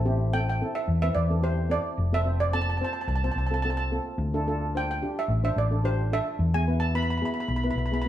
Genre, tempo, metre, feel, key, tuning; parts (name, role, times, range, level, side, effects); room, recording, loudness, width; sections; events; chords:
calypso; 109 BPM; 4/4; straight; A minor; A4 = 439 Hz
hollow-body short-scale fingered electric bass; bass; 0.0-8.1 s; F1 to E2; -26 LUFS; equal
steel pan; accompaniment; 0.1-8.1 s; B3 to C5; -31 LUFS; left 1 dB
steel pan; melody; 0.3-8.1 s; C5 to B5; -30 LUFS; right 3 dB
wet stone room reverb, RT60 0.9 s; band playing live in one room; -24 LUFS; side -12 dB against mid
0.0-8.1 A section
0.0 Am7; 2.0 F; 4.2 Dm7; 6.4 E